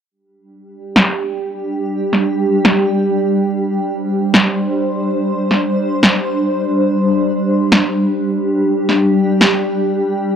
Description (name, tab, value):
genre	deep dubstep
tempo	142 BPM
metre	4/4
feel	swing 53% on 16ths, half-time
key	unclear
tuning	A4 = 440 Hz
part	granular cloud pad	sustained chords	0.9-10.4 s	G3 to C5	-15 LUFS	equal	built-in reverb
part	electronic snare drum	drums	1.0-9.5 s	none	-12 LUFS	equal	low-pass filter on snare, low-pass filter on room
room	light reverb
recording	dry, gritty hardware recording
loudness	-13 LUFS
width	side -8 dB against mid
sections	0.1-10.4 A section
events	none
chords	0.1 G5